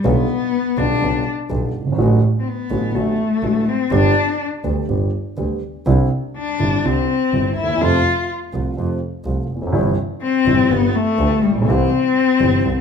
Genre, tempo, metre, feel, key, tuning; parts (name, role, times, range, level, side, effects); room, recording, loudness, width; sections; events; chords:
tango; 124 BPM; 4/4; rubato; C major; A4 = 440 Hz
warm cello; second line; 0.0-12.8 s; G3 to F4; -18 LUFS; left 5 dB
dark concert grand piano; accompaniment; 0.0-12.8 s; F#1 to G4; -20 LUFS; right 2 dB
clear double bass; bass; 0.1-12.8 s; F1 to F2; -22 LUFS; right 1 dB
wet large studio reverb, RT60 1.3 s; minimal, uncompressed stereo recording; -16 LUFS; side -6 dB against mid
0.0-12.8 A section
cello solo 0.0-12.8
0.1 G7/B; 2.0 D/A; 3.9 G; 5.9 Cadd9; 7.8 F; 9.7 C/G; 10.7 G7; 11.7 C